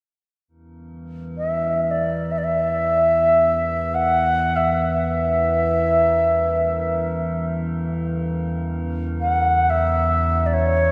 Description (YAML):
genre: world meditative, free-time meditation music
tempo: free time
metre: none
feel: none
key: unclear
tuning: A4 = 440 Hz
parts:
  - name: metallic inharmonic drone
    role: drone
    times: 0.8-10.9 s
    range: E2 to E3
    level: -26 LUFS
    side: equal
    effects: chorus, built-in reverb, phaser
  - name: bright reedy xiao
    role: melody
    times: 1.4-10.9 s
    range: C#5 to F#5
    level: -21 LUFS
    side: equal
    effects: delay
room: wet lush hall reverb, RT60 2.8 s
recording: dreamy mix soaked in reverb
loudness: -20 LUFS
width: mono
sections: 0.5-10.9 A section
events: none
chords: none